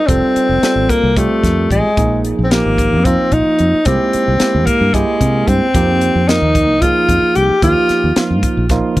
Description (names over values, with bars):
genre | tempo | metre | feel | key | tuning
electric jazz fusion | 223 BPM (eighths) | 7/8 | straight | unclear | A4 = 442 Hz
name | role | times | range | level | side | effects
warm tenor saxophone | melody | 0.0-8.2 s | Ab3 to G4 | -14 LUFS | left 1 dB | tape echo
barky tine electric piano | accompaniment | 0.1-9.0 s | F3 to Bb4 | -19 LUFS | right 4 dB | overdrive
fingered electric bass | bass | 0.1-9.0 s | F1 to Eb3 | -17 LUFS | equal | none
crisp fusion drum kit | drums | 0.1-9.0 s | hi-hat, kick drum, snare drum | -18 LUFS | equal | none
room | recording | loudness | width
light reverb | dry, close 1970s-style studio recording | -11 LUFS | side -17 dB against mid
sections
0.0-9.0 A section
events
none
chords
0.1 F; 2.0 Bb5; 3.9 C7b13; 5.7 Fm11; 7.6 Ebadd9